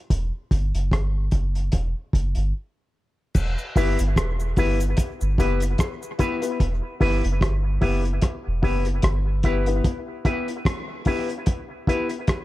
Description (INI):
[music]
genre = dub reggae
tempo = 74 BPM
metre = 4/4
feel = swing 56% on 16ths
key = E minor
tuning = A4 = 442 Hz
[part]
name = soft dub sub bass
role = bass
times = 0.1-9.8 s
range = E1 to G1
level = -23 LUFS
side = equal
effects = none
[part]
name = cloth-damped thuddy drum kit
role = drums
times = 0.1-12.4 s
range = crash cymbal, hi-hat, kick drum, rim click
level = -23 LUFS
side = equal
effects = none
[part]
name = cabasa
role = percussion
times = 3.4-6.6 s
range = none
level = -41 LUFS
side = equal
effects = none
[part]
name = electric guitar with an envelope filter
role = accompaniment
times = 3.8-12.1 s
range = E4 to B4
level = -30 LUFS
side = right 2 dB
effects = low-pass filter, dub echo
[part]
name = dark upright piano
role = stabs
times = 3.8-12.2 s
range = B3 to B4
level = -28 LUFS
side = left 6 dB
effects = low-pass filter, dub echo
[sound]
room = small room ambience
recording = echo-heavy mix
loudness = -21 LUFS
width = side -16 dB against mid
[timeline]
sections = 0.0-3.4 A section; 3.4-12.4 B section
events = break 0.0-3.4, 9.8-12.4; part muted 6.6-12.4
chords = 0.0 Em